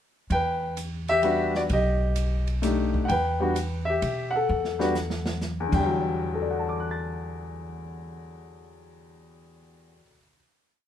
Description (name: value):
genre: jazz piano trio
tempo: 130 BPM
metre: 3/4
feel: swing 67% on 8ths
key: E minor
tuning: A4 = 440 Hz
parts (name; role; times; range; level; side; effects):
- clear baby grand piano; melody; 0.3-10.4 s; E2 to A6; -26 LUFS; left 2 dB; none
- upright bass; bass; 0.3-10.0 s; B1 to B2; -29 LUFS; equal; none
- open jazz drum kit; drums; 0.3-5.8 s; crash cymbal, hi-hat, kick drum, ride cymbal, snare drum; -36 LUFS; right 2 dB; none
room: light reverb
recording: minimal, uncompressed stereo recording, lossy compression artefacts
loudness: -24 LUFS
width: side -10 dB against mid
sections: 0.3-5.9 A section; 5.9-8.6 final chord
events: drum fill 4.5-5.4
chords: 0.3 Em9; 1.7 B7alt; 3.1 Emadd9; 5.9 Em9